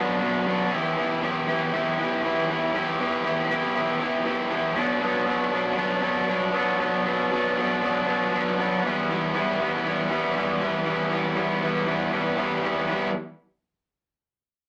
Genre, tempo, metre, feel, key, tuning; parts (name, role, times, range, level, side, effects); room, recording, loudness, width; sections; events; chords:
rock; 118 BPM; 4/4; straight; E minor; A4 = 436 Hz
raw garage guitar; solo; 0.0-13.1 s; B2 to G4; -25 LUFS; equal; overdrive
wet small room reverb, RT60 0.5 s; rough rehearsal-room recording, tube saturation; -25 LUFS; mono
0.0-4.7 A section; 4.7-12.9 B section; 12.9-14.7 C section
0.0 Bm; 0.7 Em; 4.7 Bm; 8.8 Em